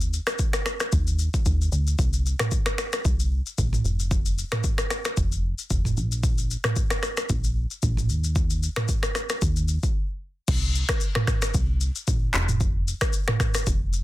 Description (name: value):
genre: afrobeats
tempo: 113 BPM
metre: 4/4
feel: swing 55% on 16ths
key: Bb major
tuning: A4 = 440 Hz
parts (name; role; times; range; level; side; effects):
- plucky analog bass; bass; 0.0-14.0 s; F1 to Eb2; -24 LUFS; equal; none
- afro-pop drum kit; drums; 0.0-14.0 s; crash cymbal, finger snaps, handclaps, kick drum, rim click, shaker, toms; -24 LUFS; equal; overdrive
room: little or no reverb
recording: dense, heavily limited modern master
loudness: -22 LUFS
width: side -16 dB against mid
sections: 0.0-10.5 A section; 10.5-14.0 B section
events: break 10.0-10.5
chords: none